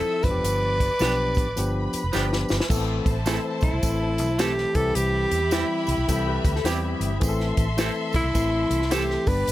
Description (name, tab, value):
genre	uptempo 1960s-style soul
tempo	106 BPM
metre	4/4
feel	swing 64% on 8ths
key	unclear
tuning	A4 = 440 Hz
part	breathy tenor saxophone	melody	0.0-9.5 s	E4 to B4	-25 LUFS	equal	none
part	rich studio violin section	second line	0.0-9.5 s	E4 to E6	-32 LUFS	equal	none
part	barky tine electric piano	accompaniment	0.0-9.5 s	E3 to B4	-29 LUFS	left 2 dB	none
part	electric guitar through a small old amp	riff	0.0-0.2, 6.1-7.2 s	C4 to B4	-33 LUFS	left 9 dB	none
part	vintage muted fingered electric bass	bass	0.2-9.5 s	F1 to E2	-27 LUFS	equal	none
part	compact cocktail drum kit	drums	0.2-9.5 s	crash cymbal, hi-hat, kick drum, snare drum	-26 LUFS	equal	none
part	tambourine	percussion	0.2-9.5 s	none	-39 LUFS	right 6 dB	none
part	clean electric guitar	stabs	1.0-9.0 s	F3 to A4	-30 LUFS	right 6 dB	none
room	little or no reverb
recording	none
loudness	-21 LUFS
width	side -15 dB against mid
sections	0.0-2.7 A section; 2.7-9.5 B section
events	drum fill 2.1-2.7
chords	0.2 G7; 2.7 Am; 4.7 C; 7.2 Am